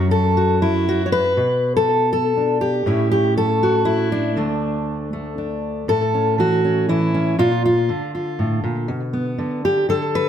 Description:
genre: folk, solo fingerstyle acoustic guitar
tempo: 120 BPM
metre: 3/4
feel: straight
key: unclear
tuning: A4 = 443 Hz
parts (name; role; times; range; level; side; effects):
- fingerpicked steel-string acoustic guitar; solo; 0.0-10.3 s; D2 to C#5; -17 LUFS; equal; slapback echo
room: light reverb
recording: close, detailed microphones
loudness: -17 LUFS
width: side -9 dB against mid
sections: 0.0-5.9 A section; 5.9-10.3 B section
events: none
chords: 0.0 F#m; 1.4 Bm; 2.9 A; 4.4 D5; 5.9 A; 7.4 Bb; 8.9 Bm7

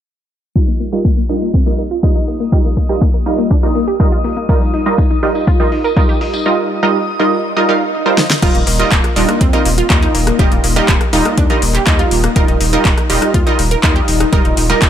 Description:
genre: progressive house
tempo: 122 BPM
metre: 4/4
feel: straight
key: Eb major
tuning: A4 = 442 Hz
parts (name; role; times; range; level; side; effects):
- analog pluck; arpeggios; 0.6-14.9 s; Bb3 to Bb4; -19 LUFS; left 1 dB; chorus, sidechain pumping, tape echo
- supersaw stab; stabs; 0.6-14.8 s; G3 to F5; -17 LUFS; right 2 dB; lush chorus, sidechain pumping, low-pass filter, tape echo
- deep house drum kit; drums; 0.6-14.9 s; crash cymbal, handclaps, hi-hat, rim click, snare drum; -18 LUFS; left 1 dB; overdrive, studio reverb
- electronic kick drum; drums; 0.6-14.9 s; none; -14 LUFS; equal; overdrive, studio reverb
- backwards swelling texture; texture; 2.5-6.5 s; Eb6; -26 LUFS; left 1 dB; built-in reverb, sidechain pumping
- tambourine; percussion; 4.5-6.4 s; none; -34 LUFS; left 3 dB; none
- swell; sound effects; 7.8-8.4 s; none; -25 LUFS; right 3 dB; none
- saturated sub bass; bass; 8.4-14.9 s; Eb1 to Eb2; -18 LUFS; equal; tube saturation, sidechain pumping
room: digital ambience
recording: low-pass filter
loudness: -11 LUFS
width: side -10 dB against mid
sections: 0.6-8.4 A section; 8.4-14.9 B section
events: filter sweep on synth pluck 0.6-8.4; filter sweep 0.6-8.4; swell 7.8-8.4; drum fill 8.2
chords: 0.6 Ebadd9

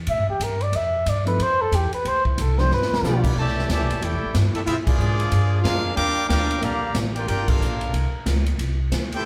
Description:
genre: jazz, big band swing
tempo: 184 BPM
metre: 4/4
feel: swing 61% on 8ths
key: C major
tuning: A4 = 440 Hz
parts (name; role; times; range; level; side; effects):
- upright bass; bass; 0.0-9.2 s; G1 to Bb2; -26 LUFS; equal; none
- trumpet with bucket mute; melody; 0.1-3.3 s; E4 to E5; -25 LUFS; equal; none
- swinging big-band drum kit; drums; 0.1-9.2 s; crash cymbal, hi-hat, kick drum, ride cymbal, snare drum; -29 LUFS; equal; none
- warm baby grand piano; accompaniment; 1.3-3.2 s; F3 to A4; -33 LUFS; equal; none
- bright trombone section; second line; 3.0-9.2 s; A2 to Ab4; -32 LUFS; equal; none
- bright trumpet section; melody; 3.1-9.3 s; Bb3 to D6; -28 LUFS; equal; none
room: wet large studio reverb, RT60 1.4 s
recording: band playing live in one room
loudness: -22 LUFS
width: mono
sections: 0.0-3.4 A section; 3.4-9.3 B section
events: muted trumpet solo 0.0-3.4; drum fill 2.7-3.0; band accent 4.8, 7.4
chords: 0.0 C (rootless); 0.7 Fmaj7; 2.0 Dm7; 2.7 G7; 3.4 C69; 4.7 Bb7; 6.0 Ebmaj9; 7.3 Gm9; 7.9 Bbmadd9/C; 8.6 Fmaj7sus2 (rootless)

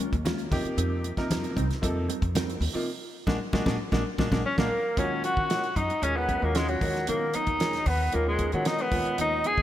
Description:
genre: electric jazz fusion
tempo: 114 BPM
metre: 4/4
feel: straight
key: Eb minor from 5.0 s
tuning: A4 = 440 Hz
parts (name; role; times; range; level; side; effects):
- bright grand piano; accompaniment; 0.0-9.5 s; Bb2 to Bb4; -32 LUFS; equal; none
- mellow electric guitar; stabs; 0.0-9.6 s; F3 to Bb4; -36 LUFS; right 1 dB; analog chorus, ping-pong delay
- damped 70s drum kit; drums; 0.0-9.6 s; hi-hat, kick drum, snare drum; -30 LUFS; right 1 dB; gated reverb
- upright bass; bass; 0.1-9.6 s; Bb1 to Eb3; -31 LUFS; equal; none
- congas; percussion; 0.3-4.7 s; none; -34 LUFS; left 2 dB; none
- warm tenor saxophone; melody; 4.5-9.6 s; Gb3 to Ab4; -27 LUFS; left 2 dB; none
- bright reedy concert flute; second line; 4.5-9.6 s; Gb4 to Ab5; -35 LUFS; right 3 dB; none
room: light reverb, small room ambience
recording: bright 1980s-style digital production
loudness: -24 LUFS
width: side -12 dB against mid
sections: 0.0-5.0 A section; 5.0-9.6 B section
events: band accent 2.9-5.0; grand piano fill 3.4-5.0; drum fill 3.9-5.0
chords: 0.0 Eb9sus4; 0.5 F9sus4; 2.9 Bbaug7; 5.0 Ebm9; 6.8 Abm9/Eb; 8.9 Db13/Eb

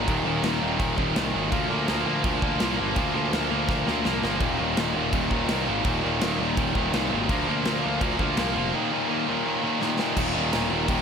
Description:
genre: punk rock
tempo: 166 BPM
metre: 4/4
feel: straight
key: unclear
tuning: A4 = 439 Hz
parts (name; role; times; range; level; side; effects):
- scooped high-gain guitar; riff; 0.0-11.0 s; Eb2 to Bb3; -31 LUFS; right 2 dB; distortion
- tight distorted guitar; riff; 0.0-11.0 s; Eb2 to Bb3; -28 LUFS; left 12 dB; distortion
- tight distorted guitar; riff; 0.0-11.0 s; Eb2 to Bb3; -28 LUFS; right 15 dB; distortion
- fuzz picked electric bass; bass; 0.0-11.0 s; Eb1 to D2; -30 LUFS; equal; overdrive
- big rock drum kit; drums; 0.1-11.0 s; crash cymbal, kick drum, snare drum; -30 LUFS; equal; none
room: little or no reverb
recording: none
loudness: -22 LUFS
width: side -6 dB against mid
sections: 0.0-10.2 A section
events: drum fill 3.7-4.4, 9.8-10.2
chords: 0.0 Eb5; 1.5 Bb; 4.4 Eb5; 7.3 Bb/D; 8.7 Eb5

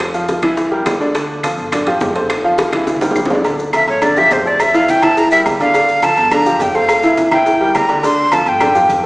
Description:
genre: latin, salsa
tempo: 209 BPM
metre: 4/4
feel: straight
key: D minor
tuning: A4 = 440 Hz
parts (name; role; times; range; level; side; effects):
- bright upright piano; accompaniment; 0.0-9.1 s; D3 to F5; -16 LUFS; equal; none
- upright bass; bass; 0.0-9.1 s; F1 to D2; -30 LUFS; equal; none
- bongos and cowbell; percussion; 0.0-9.0 s; none; -23 LUFS; left 1 dB; none
- claves; percussion; 0.0-8.7 s; none; -28 LUFS; left 1 dB; none
- congas; percussion; 0.0-9.1 s; none; -27 LUFS; equal; none
- maracas; percussion; 0.0-9.1 s; none; -36 LUFS; left 2 dB; none
- timbales and agogo bells; percussion; 0.0-9.0 s; none; -20 LUFS; right 1 dB; none
- breathy bright jazz flute; melody; 3.8-8.9 s; C5 to C6; -13 LUFS; equal; none
room: wet recital hall reverb, RT60 1.6 s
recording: recorded in a church or concert hall, small speaker sound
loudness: -11 LUFS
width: side -23 dB against mid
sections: 0.0-3.4 A section; 3.4-9.1 B section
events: drum fill 2.6-3.4; flute solo 3.4-9.1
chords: 0.0 Fmaj7; 0.6 C9; 1.1 Dm; 1.7 G5; 2.3 Fmaj7; 2.9 C9; 3.4 Dm; 4.0 G5; 4.6 Fmaj7; 5.2 C9; 5.7 Dm; 6.3 Gm7; 6.9 Fmaj7; 7.5 C9; 8.0 Dm7

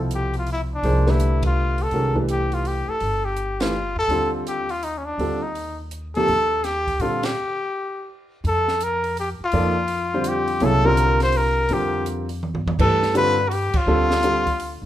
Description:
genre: modal jazz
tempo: 166 BPM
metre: 3/4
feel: swing 64% on 8ths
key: F major from 8.5 s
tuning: A4 = 440 Hz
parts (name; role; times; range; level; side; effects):
- warm grand piano; accompaniment; 0.0-7.2, 9.5-14.4 s; B2 to D5; -24 LUFS; right 1 dB; none
- upright bass; bass; 0.0-14.9 s; G1 to Bb2; -25 LUFS; equal; none
- warm trumpet; melody; 0.1-14.8 s; Db4 to C5; -22 LUFS; left 1 dB; none
- compact cocktail drum kit; drums; 0.1-14.7 s; crash cymbal, hi-hat, kick drum, ride cymbal, snare drum, toms; -29 LUFS; right 1 dB; none
room: light reverb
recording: minimal, uncompressed stereo recording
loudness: -19 LUFS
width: side -12 dB against mid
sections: 0.0-8.5 A section; 8.5-14.9 B section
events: band accent 1.4, 3.6, 7.2, 13.7; stop 7.4-8.5; drum fill 12.4-12.8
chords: 0.0 Cmaj9; 4.1 Ebmaj9; 8.5 Fsus4; 12.8 G9sus4

